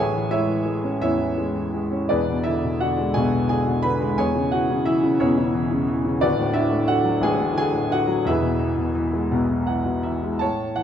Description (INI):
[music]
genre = classical, lyrical solo piano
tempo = 58 BPM (dotted quarters)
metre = 6/8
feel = uneven beats, rubato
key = unclear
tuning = A4 = 441 Hz
[part]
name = clear concert grand piano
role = solo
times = 0.0-10.8 s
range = D1 to B5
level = -20 LUFS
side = equal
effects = none
[sound]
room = moderate recital hall reverb, RT60 1.6 s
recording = minimal, uncompressed stereo recording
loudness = -19 LUFS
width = side -9 dB against mid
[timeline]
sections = 0.0-10.4 A section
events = grand piano fill 9.3-10.4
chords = 0.0 Amaj7; 2.1 E7; 4.2 E69; 6.2 D6; 8.3 E